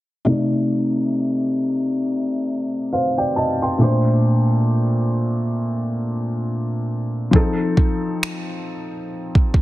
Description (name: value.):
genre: contemporary R&B.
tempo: 68 BPM.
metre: 4/4.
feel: swing 58% on 16ths.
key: C dorian.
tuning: A4 = 441 Hz.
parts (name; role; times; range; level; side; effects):
felt-muted upright piano; accompaniment; 0.2-9.6 s; Bb2 to C6; -19 LUFS; equal; low-pass filter.
smooth R&B drum kit; drums; 7.3-9.6 s; finger snaps, kick drum; -17 LUFS; right 1 dB; soft clipping on snare.
room: studio reverb.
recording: dense, heavily limited modern master.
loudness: -18 LUFS.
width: side -16 dB against mid.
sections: 0.3-9.6 A section.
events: filter sweep on felt piano 0.3-9.6.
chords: 0.3 Cm69; 3.8 Bbmaj9; 7.3 F7.